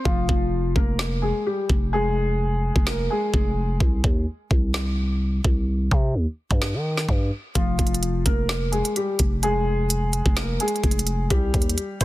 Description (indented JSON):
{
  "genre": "hip hop, trap",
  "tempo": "128 BPM",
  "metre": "4/4",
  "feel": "half-time",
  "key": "F minor",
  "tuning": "A4 = 442 Hz",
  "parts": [
    { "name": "dark grand piano", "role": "melody", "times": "0.1-3.8, 7.6-12.0 s", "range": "F3 to C5", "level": "-25 LUFS", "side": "left 1 dB", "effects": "digital delay" },
    { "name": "growling 808-style bass", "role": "bass", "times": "0.1-12.0 s", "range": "F1 to Eb3", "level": "-24 LUFS", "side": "equal", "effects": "none" },
    { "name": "trap drum kit", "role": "drums", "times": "0.1-12.0 s", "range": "hi-hat, kick drum, snare drum", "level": "-23 LUFS", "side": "equal", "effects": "none" }
  ],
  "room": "little or no reverb",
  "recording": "dense, heavily limited modern master, low-pass filter",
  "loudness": "-20 LUFS",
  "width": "side -17 dB against mid",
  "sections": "0.1-12.0 A section",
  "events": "break 0.1-7.6",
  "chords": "0.1 Fm; 3.8 Cm; 7.6 Fm; 11.3 Cm",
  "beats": "| 0.05 0.52 0.99 1.46 | 1.93 2.40 2.87 3.33 | 3.80 4.27 4.74 5.21 | 5.68 6.15 6.62 7.08 | 7.55 8.02 8.49 8.96 | 9.43 9.90 10.37 10.84 | 11.30 11.77"
}